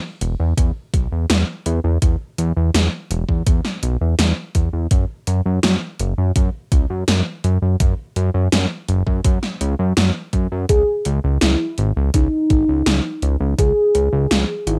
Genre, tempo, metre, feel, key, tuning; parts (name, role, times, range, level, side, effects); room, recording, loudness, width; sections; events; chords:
synthwave; 83 BPM; 4/4; straight; A4 = 440 Hz
fat analog bass; bass; 0.2-14.8 s; E1 to F#2; -20 LUFS; equal; sidechain pumping
80s electronic pad drums; drums; 0.2-14.8 s; hi-hat, snare drum; -22 LUFS; equal; overdrive, cassette tape
electronic kick drum; drums; 0.6-13.7 s; -20 LUFS; equal; cassette tape
warm velvety synth lead; melody; 10.7-14.8 s; D#4 to G#4; -21 LUFS; equal; chorus, cassette tape, analog delay
light reverb; home recording on cassette; -19 LUFS; mono
0.0-14.8 A section
0.0 E5; 4.9 F#5; 10.7 C#5